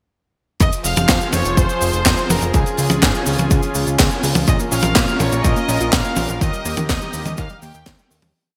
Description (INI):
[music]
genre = italo disco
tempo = 124 BPM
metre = 4/4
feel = straight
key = F minor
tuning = A4 = 441 Hz
[part]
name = rich chamber violin section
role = melody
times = 0.6-8.1 s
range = G4 to F6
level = -27 LUFS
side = equal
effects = digital delay
[part]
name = warm analog pad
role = sustained chords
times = 0.6-8.3 s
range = Eb3 to C5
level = -27 LUFS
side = equal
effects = subtle chorus
[part]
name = fat analog bass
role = bass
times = 0.6-8.3 s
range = Eb1 to Bb2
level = -24 LUFS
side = equal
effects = none
[part]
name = electronic kick drum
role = drums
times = 0.6-8.0 s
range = none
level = -21 LUFS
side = equal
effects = studio ambience
[part]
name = tight funk drum kit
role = drums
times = 0.6-8.3 s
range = cabasa, handclaps, hi-hat, snare drum, toms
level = -21 LUFS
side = equal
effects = studio ambience, gated reverb
[part]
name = analog pluck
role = arpeggios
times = 4.5-8.3 s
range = Eb3 to F4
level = -31 LUFS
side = equal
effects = none
[sound]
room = moderate lush hall reverb, RT60 2.0 s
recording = bright 1980s-style digital production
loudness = -17 LUFS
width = mono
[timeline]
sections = 0.6-8.3 chorus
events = fade-out 5.8-8.3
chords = 0.6 Fm; 2.5 Db; 4.5 Bbm; 6.4 Eb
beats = | 0.61 1.09 1.57 2.06 | 2.54 3.02 3.51 3.99 | 4.48 4.96 5.44 5.93 | 6.41 6.90 7.38 7.86